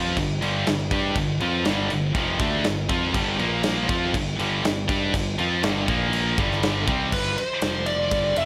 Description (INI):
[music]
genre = hard rock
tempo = 121 BPM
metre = 4/4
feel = straight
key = unclear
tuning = A4 = 441 Hz
[part]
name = scooped high-gain guitar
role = riff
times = 0.0-8.5 s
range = F2 to G4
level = -29 LUFS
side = equal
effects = distortion
[part]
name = tight distorted guitar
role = riff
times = 0.0-7.1 s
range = F2 to G4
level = -30 LUFS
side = equal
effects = distortion
[part]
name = overdriven picked electric bass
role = bass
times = 0.0-8.5 s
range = F1 to G2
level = -31 LUFS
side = equal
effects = none
[part]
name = big rock drum kit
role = drums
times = 0.2-8.5 s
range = crash cymbal, kick drum, ride cymbal, snare drum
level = -29 LUFS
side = equal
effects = none
[part]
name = biting lead guitar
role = melody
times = 7.1-8.5 s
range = B4 to E5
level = -26 LUFS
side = equal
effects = overdrive, plate reverb
[sound]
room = moderate studio reverb, RT60 0.6 s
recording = none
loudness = -23 LUFS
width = mono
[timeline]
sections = 0.0-7.1 A section; 7.1-8.5 B section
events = none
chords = 0.0 G5; 3.4 Bb5; 3.9 G5; 5.9 Bb5; 6.4 G5; 7.1 G; 7.6 F5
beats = 0.18 0.68 | 1.17 1.67 2.17 2.66 | 3.16 3.65 4.15 4.65 | 5.14 5.64 6.13 6.63 | 7.13 7.62 8.12